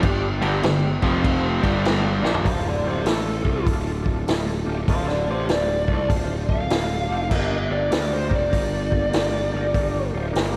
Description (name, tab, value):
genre	blues rock power trio and southern rock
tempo	99 BPM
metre	4/4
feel	swing 64% on 8ths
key	D minor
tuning	A4 = 440 Hz
part	overdriven tonewheel organ	sustained chords	0.0-10.6 s	F3 to D5	-34 LUFS	equal	slow rotary speaker, chorus vibrato
part	cranked stack guitar	riff	0.0-2.5 s	F2 to Bb3	-26 LUFS	equal	overdrive
part	fuzz picked electric bass	bass	0.0-10.6 s	D1 to D2	-28 LUFS	equal	overdrive
part	vintage drum kit	drums	0.0-10.5 s	crash cymbal, hi-hat, kick drum, snare drum, toms	-26 LUFS	equal	none
part	dark smooth lead guitar	second line	2.4-10.1 s	G4 to F5	-28 LUFS	equal	overdrive
room	moderate lush hall reverb, RT60 3.0 s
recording	big arena sound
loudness	-22 LUFS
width	mono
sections	0.0-2.5 A section; 2.5-10.6 B section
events	drum fill 2.2-2.5; lead electric guitar solo 2.5-10.6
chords	0.0 G5; 0.9 F5; 1.6 G5; 2.5 Dm; 7.3 Gm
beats	| 0.04 0.64 1.25 1.85 | 2.46 3.06 3.67 4.28 | 4.89 5.49 6.10 6.71 | 7.32 7.93 8.53 9.14 | 9.75 10.36